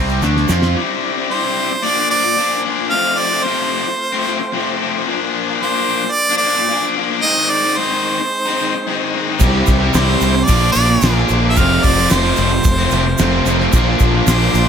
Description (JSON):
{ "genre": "classic rock", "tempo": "111 BPM", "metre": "4/4", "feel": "straight", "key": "unclear", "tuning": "A4 = 440 Hz", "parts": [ { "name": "overdriven electric guitar", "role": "riff", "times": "0.0-0.8, 9.4-14.7 s", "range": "F2 to G4", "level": "-21 LUFS", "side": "right 11 dB", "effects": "none" }, { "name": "raw garage guitar", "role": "riff", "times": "0.0-14.7 s", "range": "F2 to F4", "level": "-19 LUFS", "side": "left 7 dB", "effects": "overdrive, spring reverb" }, { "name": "modern bright fingered electric bass", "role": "bass", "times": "0.0-0.7, 9.4-14.7 s", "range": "F1 to F2", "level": "-17 LUFS", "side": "equal", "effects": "none" }, { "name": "egg shaker", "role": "percussion", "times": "0.1-0.7, 9.4-14.7 s", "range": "none", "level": "-26 LUFS", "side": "right 12 dB", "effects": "none" }, { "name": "cloth-damped thuddy drum kit", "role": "drums", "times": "0.2-0.7, 9.4-14.7 s", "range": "crash cymbal, kick drum, snare drum", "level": "-18 LUFS", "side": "equal", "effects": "none" }, { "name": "tonewheel organ", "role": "sustained chords", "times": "0.7-14.7 s", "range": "G3 to Db5", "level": "-28 LUFS", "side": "right 1 dB", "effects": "slow rotary speaker, overdrive" }, { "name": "bright harmonica", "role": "melody", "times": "1.3-14.7 s", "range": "C5 to F5", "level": "-18 LUFS", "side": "right 2 dB", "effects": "none" }, { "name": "crunchy overdriven guitar", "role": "riff", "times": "9.4-14.7 s", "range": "F2 to E4", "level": "-20 LUFS", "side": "equal", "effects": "none" } ], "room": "light reverb", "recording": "none", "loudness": "-13 LUFS", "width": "side -7 dB against mid", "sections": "0.8-14.7 A section", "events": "drum fill 0.2-0.8", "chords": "0.0 N.C.; 0.8 Cadd9; 1.8 Bbadd9; 2.9 F; 5.1 Bbadd9; 7.2 Ab; 9.4 Cadd9; 10.5 Bbadd9; 11.6 F; 13.7 Bbadd9", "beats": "0.22 | 0.76 1.30 1.84 2.38 | 2.92 3.46 4.00 4.54 | 5.08 5.62 6.16 6.70 | 7.24 7.78 8.32 8.86 | 9.40 9.94 10.48 11.02 | 11.56 12.11 12.65 13.19 | 13.73 14.27" }